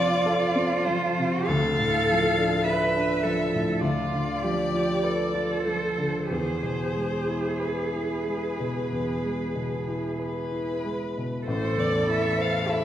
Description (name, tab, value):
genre	classical, slow romantic movement for piano trio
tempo	46-52 BPM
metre	4/4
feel	rubato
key	unclear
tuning	A4 = 440 Hz
part	dark violin	melody	0.0-12.8 s	B4 to F5	-30 LUFS	left 2 dB	none
part	warm cello	second line	0.0-12.8 s	E4 to B4	-28 LUFS	right 2 dB	none
part	warm baby grand piano	accompaniment	0.0-12.8 s	A1 to C5	-27 LUFS	equal	none
room	wet recital hall reverb, RT60 1.5 s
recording	heard from further back in the room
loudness	-23 LUFS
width	side -11 dB against mid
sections	0.0-11.5 A section; 11.5-12.8 B section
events	none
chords	0.0 F; 1.5 Dm; 3.8 Bdim/D; 6.3 E; 11.5 Am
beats	0.23 | 1.47 2.65 3.82 5.03 | 6.30 7.61 8.90 10.19 | 11.47 12.69